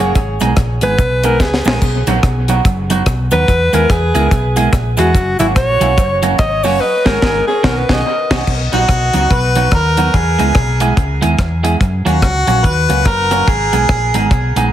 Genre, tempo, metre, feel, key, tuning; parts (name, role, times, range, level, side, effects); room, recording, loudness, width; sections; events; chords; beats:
ska; 144 BPM; 4/4; swing 60% on 8ths; B major; A4 = 442 Hz
breathy alto saxophone; melody; 0.0-8.5 s; E4 to D#5; -17 LUFS; equal; dub echo
clean electric guitar; accompaniment; 0.0-14.7 s; D#3 to G#4; -18 LUFS; right 4 dB; spring reverb
hollow-body short-scale fingered electric bass; bass; 0.0-14.7 s; F#1 to F#2; -17 LUFS; equal
deep reggae drum kit; drums; 0.2-14.6 s; crash cymbal, hi-hat, kick drum, rim click, snare drum, splash cymbal; -16 LUFS; equal; dub echo
cabasa; percussion; 0.2-6.7 s; -33 LUFS; left 8 dB
warm harmonica; melody; 8.7-14.3 s; F#4 to B4; -16 LUFS; left 1 dB; dub echo
light reverb; heavily compressed radio sound; -11 LUFS; side -11 dB against mid
0.0-8.5 A section; 8.5-14.7 B section
alto saxophone solo 0.0-8.5; drum fill 1.4-1.8; band accent 6.8-8.5
0.2 G#m; 1.8 B; 3.5 E; 5.1 F#; 6.8 G#m; 7.6 Badd9; 8.5 B; 10.1 E; 11.8 F#; 13.5 G#m
| 0.15 0.57 0.99 1.40 | 1.82 2.23 2.65 3.07 | 3.48 3.90 4.32 4.73 | 5.15 5.56 5.98 6.39 | 6.81 7.23 7.64 8.06 | 8.47 8.89 9.31 9.72 | 10.14 10.56 10.97 11.39 | 11.81 12.22 12.64 13.06 | 13.47 13.89 14.31